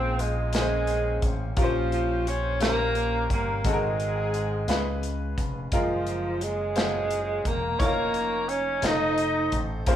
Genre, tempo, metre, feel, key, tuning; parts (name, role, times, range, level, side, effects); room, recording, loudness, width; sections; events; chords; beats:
slow gospel; 58 BPM (dotted quarters); 6/8; straight; A4 = 440 Hz
breathy tenor saxophone; melody; 0.0-10.0 s; F3 to Eb4; -28 LUFS; right 2 dB
mellow horn section; melody; 0.0-10.0 s; F3 to Eb5; -31 LUFS; left 3 dB
bright grand piano; accompaniment; 0.0-10.0 s; Ab2 to Db5; -31 LUFS; left 2 dB
slap bass with an envelope filter; bass; 0.0-10.0 s; Fb1 to Db2; -31 LUFS; equal
modern studio drum kit; drums; 0.2-10.0 s; hi-hat, kick drum, snare drum; -29 LUFS; equal
moderate large studio reverb, RT60 0.9 s; band playing live in one room; -23 LUFS; side -10 dB against mid
0.0-10.0 A section
0.0 Bbm9; 1.6 Bbm69; 3.7 Ab9; 4.7 Db7; 5.7 Gbmaj9; 7.8 Db69/F; 8.8 F7
0.54 | 1.58 2.62 | 3.66 4.70 | 5.73 6.77 | 7.81 8.84 | 9.88